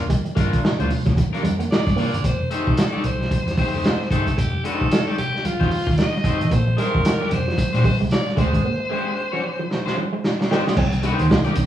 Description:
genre	funk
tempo	112 BPM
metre	4/4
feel	swing 60% on 16ths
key	unclear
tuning	A4 = 438 Hz
part	electric guitar at the edge of break-up	accompaniment	0.0-11.6 s	Ab3 to D5	-27 LUFS	left 3 dB	none
part	vintage muted fingered electric bass	bass	0.0-11.7 s	F1 to C3	-24 LUFS	equal	none
part	electric guitar with an envelope filter	riff	0.1-2.1, 6.5-11.6 s	Eb3 to C4	-28 LUFS	right 3 dB	none
part	vintage drum kit	drums	0.1-11.7 s	crash cymbal, hi-hat, kick drum, snare drum	-21 LUFS	equal	none
part	congas	percussion	0.3-11.7 s	none	-30 LUFS	right 3 dB	none
part	raspy alto saxophone	melody	1.7-10.2 s	F4 to Eb5	-26 LUFS	equal	none
room	wet large studio reverb, RT60 0.8 s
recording	band playing live in one room, vinyl crackle, studio reverb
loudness	-18 LUFS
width	side -11 dB against mid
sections	0.0-2.2 A section; 2.2-10.8 B section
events	break 8.6-10.8; drum fill 9.7-10.8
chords	0.0 Gm7; 2.2 F9; 6.5 Bb13 (rootless); 10.8 Cm7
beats	| 0.10 0.64 1.17 1.71 | 2.24 2.77 3.31 3.84 | 4.38 4.91 5.45 5.98 | 6.51 7.04 7.58 8.11 | 8.64 9.17 9.71 10.24 | 10.77 11.30

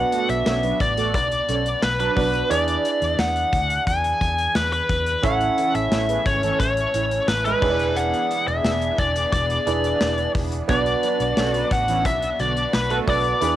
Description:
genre	1980s-style pop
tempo	88 BPM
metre	4/4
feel	straight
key	unclear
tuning	A4 = 437 Hz
part	biting lead guitar	melody	0.0-13.6 s	B4 to G#5	-22 LUFS	left 2 dB	overdrive, cassette tape
part	clear concert grand piano	accompaniment	0.0-13.6 s	B3 to E5	-27 LUFS	right 7 dB	cassette tape
part	vintage muted fingered electric bass	bass	0.0-13.6 s	E1 to E2	-27 LUFS	left 1 dB	none
part	analog synth brass	stabs	0.1-13.2 s	D3 to D5	-28 LUFS	right 8 dB	chorus, cassette tape
part	modern studio drum kit	drums	0.1-13.6 s	crash cymbal, hi-hat, kick drum, snare drum, tambourine	-26 LUFS	left 1 dB	none
part	lush unison pad	sustained chords	5.6-13.6 s	E3 to G#4	-32 LUFS	equal	chorus, phaser, cassette tape
room	moderate studio reverb, RT60 0.6 s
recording	home recording on cassette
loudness	-19 LUFS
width	side -13 dB against mid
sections	0.0-13.6 A section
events	none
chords	0.0 Bm; 2.5 E7; 5.2 A; 7.6 E7; 10.7 Bm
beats	0.46 1.14 1.83 | 2.51 3.19 3.87 4.55 | 5.24 5.92 6.60 7.28 | 7.96 8.64 9.33 10.01 | 10.69 11.37 12.05 12.73 | 13.42

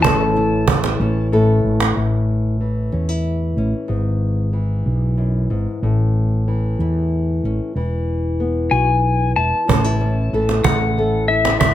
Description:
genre	acoustic folk duo or small band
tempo	62 BPM (dotted quarters)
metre	6/8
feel	straight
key	A major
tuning	A4 = 436 Hz
part	pedal steel guitar	melody	0.0-1.3, 8.7-11.7 s	E5 to A5	-20 LUFS	left 4 dB	none
part	nylon-string guitar	accompaniment	0.0-11.7 s	F#2 to A4	-21 LUFS	left 2 dB	none
part	mellow fretless electric bass	bass	0.0-11.7 s	E1 to E2	-19 LUFS	right 1 dB	none
part	cajon	percussion	0.0-2.0, 9.7-11.7 s	none	-18 LUFS	right 4 dB	none
room	light reverb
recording	none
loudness	-16 LUFS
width	side -12 dB against mid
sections	0.0-2.0 A section; 2.0-9.7 B section; 9.7-11.7 C section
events	none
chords	0.0 A; 3.9 E/G#; 5.8 A; 7.8 E; 9.7 A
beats	| 0.04 1.00 | 1.96 2.93 | 3.89 4.86 | 5.82 6.79 | 7.75 8.71 | 9.68 10.64 | 11.61

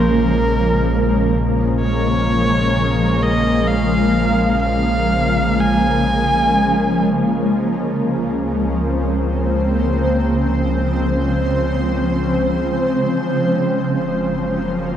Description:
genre	ambient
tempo	free time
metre	none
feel	none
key	Bb minor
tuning	A4 = 438 Hz
part	clear electric violin	melody	0.0-7.1 s	Bb4 to Ab5	-21 LUFS	equal	dub echo
part	shimmering ambient pad	sustained chords	0.0-15.0 s	Db3 to C5	-17 LUFS	equal	chorus, built-in reverb
part	deep rumbling drone	bass	0.0-15.0 s	Gb1 to Db2	-22 LUFS	equal	built-in reverb
room	wet spring reverb, RT60 2.4 s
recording	echo-heavy mix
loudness	-15 LUFS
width	side -10 dB against mid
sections	0.0-15.0 A section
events	fade-out on synth drone 0.0-15.0; filter sweep on ambient pad 0.0-15.0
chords	0.0 Bbm7; 7.6 Dbmaj7; 13.3 Gbmaj7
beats	free time

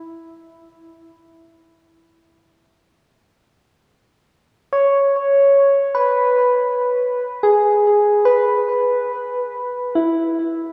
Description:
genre	world meditative, free-time meditation music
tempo	free time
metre	none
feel	none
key	E major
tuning	A4 = 440 Hz
part	soft struck synth lead	solo	0.0-10.7 s	E4 to C#5	-17 LUFS	equal	chorus, tape echo
room	wet plate reverb, RT60 3.2 s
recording	dreamy mix soaked in reverb, small room ambience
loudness	-17 LUFS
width	mono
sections	0.0-10.7 A section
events	none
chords	none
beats	free time

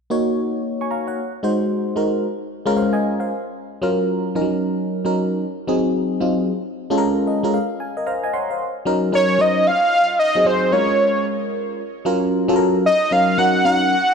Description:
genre	R&B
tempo	113 BPM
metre	4/4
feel	swing 63% on 16ths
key	Eb dorian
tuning	A4 = 440 Hz
part	FM electric piano	accompaniment	0.1-13.9 s	F3 to Db6	-19 LUFS	equal	chorus, phaser
part	fat analog lead	melody	9.2-14.1 s	C5 to Gb5	-16 LUFS	equal	ping-pong delay
room	wet plate reverb, RT60 2.7 s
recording	dark, warm production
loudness	-17 LUFS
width	side -6 dB against mid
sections	0.1-8.6 A section; 8.6-14.1 B section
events	FM electric piano fill 7.0-8.6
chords	0.1 Ebm7; 1.2 Ab7; 2.2 Db6; 3.3 Gbmaj7; 4.4 Ebm7; 5.4 Ab7; 6.5 Db6; 7.5 N.C.; 8.6 Ebm7; 9.7 Ab7; 10.7 Db6; 11.8 Gbmaj7; 12.8 Ebm7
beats	| 0.10 0.63 1.17 1.70 | 2.23 2.76 3.29 3.82 | 4.35 4.88 5.41 5.94 | 6.47 7.00 7.54 8.07 | 8.60 9.13 9.66 10.19 | 10.72 11.25 11.78 12.31 | 12.85 13.38 13.91

